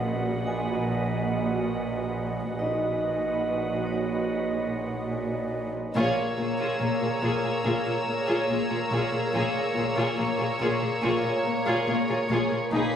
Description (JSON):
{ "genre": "cinematic, suspense film score", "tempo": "71 BPM", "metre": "4/4", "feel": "straight", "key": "Bb phrygian", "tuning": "A4 = 440 Hz", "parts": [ { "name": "glassy FM pad", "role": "sustained chords", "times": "0.0-13.0 s", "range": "F#4 to D#5", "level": "-32 LUFS", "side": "right 2 dB", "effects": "ensemble chorus, built-in reverb" }, { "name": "clear chamber double bass section", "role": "bass", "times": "0.0-12.8 s", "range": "Bb1", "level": "-34 LUFS", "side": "right 2 dB", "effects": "none" }, { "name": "dark studio cello section", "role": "bass", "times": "0.0-13.0 s", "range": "Bb2", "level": "-33 LUFS", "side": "right 2 dB", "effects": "none" }, { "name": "vibraphone with hard mallets", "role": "texture", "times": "0.5-12.7 s", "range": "D#4 to Db6", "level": "-34 LUFS", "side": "right 1 dB", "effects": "none" }, { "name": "clear studio violin section", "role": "melody", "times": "6.0-13.0 s", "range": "Cb5 to Db5", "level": "-32 LUFS", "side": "right 1 dB", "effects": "none" }, { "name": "warm chamber violin section", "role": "second line", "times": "6.0-12.9 s", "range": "Ab4", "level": "-33 LUFS", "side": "left 1 dB", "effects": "none" }, { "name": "dark chamber viola section", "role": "accompaniment", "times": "6.0-13.0 s", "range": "Eb4 to F4", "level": "-31 LUFS", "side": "right 1 dB", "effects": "none" }, { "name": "Celtic harp", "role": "riff", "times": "6.0-13.0 s", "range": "Bb2 to Bb3", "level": "-29 LUFS", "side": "left 5 dB", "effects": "none" }, { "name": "warm chamber violin section", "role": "texture", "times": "6.0-13.0 s", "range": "Bb5 to C7", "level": "-35 LUFS", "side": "left 2 dB", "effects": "none" } ], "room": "moderate scoring stage reverb, RT60 1.8 s", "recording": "recorded on a phone in the room, studio reverb", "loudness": "-24 LUFS", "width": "side -8 dB against mid", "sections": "0.0-6.0 A section; 6.0-13.0 B section", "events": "band accent 6.0-6.8", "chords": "0.0 B/Bb; 6.0 Bbm7" }